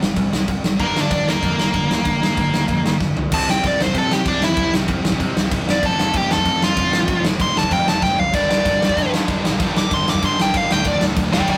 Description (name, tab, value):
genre	punk rock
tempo	191 BPM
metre	4/4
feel	straight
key	unclear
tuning	A4 = 440 Hz
part	distorted electric guitar	riff	0.0-3.3, 8.3-11.6 s	D2 to G3	-28 LUFS	equal	overdrive
part	sludgy distorted guitar	riff	0.0-11.6 s	D2 to C5	-28 LUFS	equal	overdrive
part	growling picked electric bass	bass	0.0-11.6 s	D1 to C3	-30 LUFS	equal	overdrive
part	big rock drum kit	drums	0.0-11.6 s	crash cymbal, kick drum, snare drum, toms	-22 LUFS	equal	none
part	nasal lead guitar with a parked wah	melody	0.8-11.6 s	Bb3 to D6	-22 LUFS	equal	overdrive
room	light reverb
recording	rough rehearsal-room recording, warm saturation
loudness	-18 LUFS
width	mono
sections	0.0-3.3 A section; 3.3-11.6 B section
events	drum fill 3.0-3.3, 8.0-8.3; lead electric guitar solo 3.3-11.6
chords	0.0 C5; 0.8 Gm; 3.3 C; 5.7 F; 8.3 Gm; 10.7 Dm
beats	0.17 0.48 | 0.80 1.11 1.43 1.74 | 2.06 2.37 2.68 3.00 | 3.31 3.63 3.94 4.25 | 4.57 4.88 5.20 5.51 | 5.82 6.14 6.45 6.77 | 7.08 7.39 7.71 8.02 | 8.34 8.65 8.96 9.28 | 9.59 9.91 10.22 10.54 | 10.85 11.16 11.48